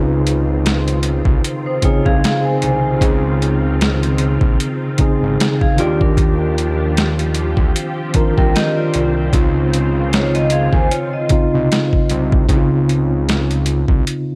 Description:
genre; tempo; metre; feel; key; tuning
lo-fi hip hop; 76 BPM; 4/4; swing 56% on 16ths; Db major; A4 = 438 Hz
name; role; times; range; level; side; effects
mellow tine electric piano; accompaniment; 0.0-14.4 s; Db3 to Cb5; -20 LUFS; equal; cassette tape, low-pass filter
string machine, full ensemble; sustained chords; 0.0-12.5 s; Eb3 to G4; -29 LUFS; equal; ensemble chorus, low-pass filter
fat analog bass; bass; 0.0-14.1 s; Ab1 to Eb2; -22 LUFS; equal; none
boom bap sampler-style drum kit; drums; 0.3-14.3 s; hi-hat, kick drum, snare drum; -19 LUFS; equal; overdrive
vibraphone with medium hard mallets; second line; 1.7-12.3 s; D4 to Ab5; -24 LUFS; equal; low-pass filter, slapback echo
room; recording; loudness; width
light reverb, digital ambience; none; -16 LUFS; mono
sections
0.0-12.5 A section; 12.5-14.4 B section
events
none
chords
0.0 Dbmaj9; 5.8 Ebmaj9; 9.3 Dbmaj9

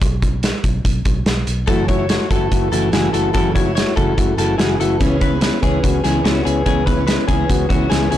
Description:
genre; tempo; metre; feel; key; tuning
jangly indie pop; 144 BPM; 4/4; straight; unclear; A4 = 440 Hz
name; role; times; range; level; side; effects
vintage muted fingered electric bass; bass; 0.0-8.2 s; F#1 to C#2; -22 LUFS; right 1 dB; none
loose indie drum kit; drums; 0.0-8.2 s; hi-hat, kick drum, snare drum; -19 LUFS; right 1 dB; none
combo organ; accompaniment; 1.7-8.2 s; A3 to F#4; -20 LUFS; left 4 dB; none
picked steel-string acoustic guitar; accompaniment; 1.7-8.2 s; F#2 to G#4; -23 LUFS; right 4 dB; none
direct-recorded clean electric guitar; arpeggios; 1.7-8.2 s; F#4 to C#5; -23 LUFS; left 4 dB; wide subtle chorus, tape echo
room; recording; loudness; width
moderate club reverb, RT60 0.5 s; blown-out, overdriven recording, overdrive; -14 LUFS; side -12 dB against mid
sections
0.0-8.2 A section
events
none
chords
0.0 N.C.; 1.7 F#m7; 5.0 C#m7

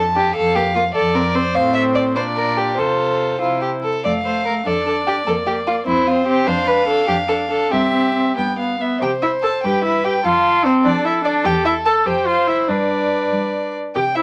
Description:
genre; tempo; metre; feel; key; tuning
quick classical-period movement for string quartet; 91-102 BPM (dotted quarters); 6/8; rubato; F major, C major from 6.5 s; A4 = 440 Hz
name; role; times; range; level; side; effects
warm violin; melody; 0.0-14.2 s; A4 to A5; -24 LUFS; equal; none
rich violin; second line; 0.0-14.2 s; E4 to A5; -23 LUFS; equal; none
rich cello; bass; 0.0-14.2 s; E2 to G3; -29 LUFS; equal; none
warm viola; accompaniment; 0.2-14.2 s; A3 to A4; -22 LUFS; equal; none
room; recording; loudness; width
moderate studio reverb, RT60 0.6 s; vinyl crackle; -18 LUFS; mono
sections
0.0-9.0 A section; 9.0-14.2 B section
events
none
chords
0.4 Fadd11; 1.0 F6; 1.6 Am; 2.2 Bb; 2.8 F/C; 3.4 C; 4.0 F; 4.7 Dm/F; 5.3 Gm7/F (rootless); 5.9 Cadd11/F; 6.5 Dm/F; 7.7 C/G; 8.4 G; 9.0 C5; 10.2 F; 11.5 Emadd11; 12.1 Cadd11/F; 12.7 G

